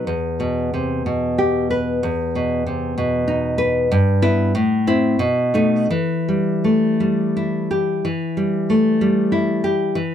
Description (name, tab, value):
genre	romantic piece for solo classical guitar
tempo	83-100 BPM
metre	3/4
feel	rubato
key	E minor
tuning	A4 = 440 Hz
part	nylon-string guitar	solo	0.0-10.1 s	E2 to B4	-17 LUFS	equal	none
room	moderate booth ambience, RT60 0.3 s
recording	dark, warm production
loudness	-17 LUFS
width	side -9 dB against mid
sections	0.0-8.1 A section; 8.1-10.1 A section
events	none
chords	0.1 Em; 2.1 B/E; 3.9 Em/G; 4.6 Am; 5.2 B7; 5.9 Em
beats	| 0.08 0.76 1.41 | 2.05 2.68 3.29 | 3.92 4.56 5.21 | 5.92 6.65 7.37 | 8.06 8.71 9.35 | 9.98